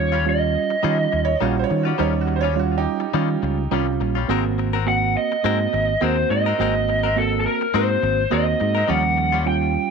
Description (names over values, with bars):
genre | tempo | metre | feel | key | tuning
blues | 104 BPM | 4/4 | swing 54% on 16ths | Eb mixolydian | A4 = 440 Hz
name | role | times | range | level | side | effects
lead guitar through a small cranked amp | melody | 0.0-1.4, 4.9-9.9 s | A4 to G5 | -21 LUFS | equal | overdrive
reed electric piano | accompaniment | 0.0-9.9 s | F3 to Gb4 | -24 LUFS | right 13 dB | none
fingered electric bass | bass | 0.0-9.8 s | Ab1 to Eb3 | -23 LUFS | left 2 dB | none
direct-recorded clean electric guitar | stabs | 0.1-9.5 s | Eb3 to Bb4 | -28 LUFS | left 14 dB | tape echo
bright upright piano | second line | 1.2-3.9 s | Eb4 to Db5 | -26 LUFS | right 8 dB | none
room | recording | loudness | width
moderate spring reverb, RT60 1.3 s, digital ambience | 1960s-style stereo with parts hard left and right | -18 LUFS | side -5 dB against mid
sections
0.0-9.9 A section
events
none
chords
0.0 Eb9; 4.3 Ab9; 8.9 Eb9